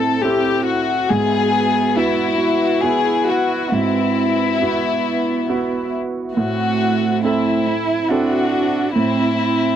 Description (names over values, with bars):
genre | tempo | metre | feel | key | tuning
neoclassical piano and strings | 69 BPM | 3/4 | rubato | A dorian | A4 = 441 Hz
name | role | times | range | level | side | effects
warm chamber violin section | melody | 0.0-9.8 s | E4 to A4 | -19 LUFS | left 5 dB | none
dark cello | second line | 0.0-9.8 s | A3 to F#4 | -22 LUFS | right 6 dB | none
clear concert grand piano | accompaniment | 0.0-9.8 s | G#2 to A4 | -22 LUFS | right 3 dB | none
brassy analog pad | sustained chords | 0.0-9.8 s | C4 to E5 | -28 LUFS | equal | chorus
room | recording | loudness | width
light reverb | dry, close 1970s-style studio recording | -16 LUFS | side -9 dB against mid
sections
0.0-9.8 A section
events
none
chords
0.0 Am; 1.1 Eadd9/G#; 6.4 Am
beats
0.24 | 1.10 1.96 2.83 | 3.71 4.60 5.48 | 6.36 7.24 8.10 | 8.95